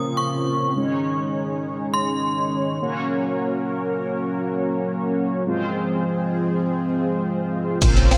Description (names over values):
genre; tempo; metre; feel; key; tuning
dance-pop; 102 BPM; 4/4; straight; unclear; A4 = 436 Hz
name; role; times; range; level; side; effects
synth chime; melody; 0.0-2.8 s; C6 to Eb6; -28 LUFS; equal; ensemble chorus, tremolo, digital delay
mellow synth brass; accompaniment; 0.0-8.2 s; Ab3 to Db5; -27 LUFS; equal; chorus, sidechain pumping
chorused pulse-width pad; sustained chords; 0.0-8.2 s; Bb2 to Bb4; -28 LUFS; equal; sidechain pumping
solid FM bass; bass; 7.8-8.2 s; Bb1; -20 LUFS; equal; sidechain pumping
punchy analog drum machine; drums; 7.8-8.2 s; crash cymbal, hi-hat, kick drum, shaker; -19 LUFS; equal; none
direct-recorded clean electric guitar; riff; 8.0-8.2 s; C4; -26 LUFS; equal; ensemble chorus
mellow hollow concert flute; melody; 8.1-8.2 s; F5; -29 LUFS; equal; none
room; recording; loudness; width
wet lush hall reverb, RT60 2.0 s, digital ambience; bright 1980s-style digital production; -23 LUFS; mono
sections
0.0-7.8 A section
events
none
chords
0.0 Bbmadd9; 0.8 Absus4; 2.8 Gb; 5.5 Fm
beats
0.17 | 0.76 1.35 1.94 2.52 | 3.11 3.70 4.29 4.88 | 5.47 6.05 6.64 7.23 | 7.82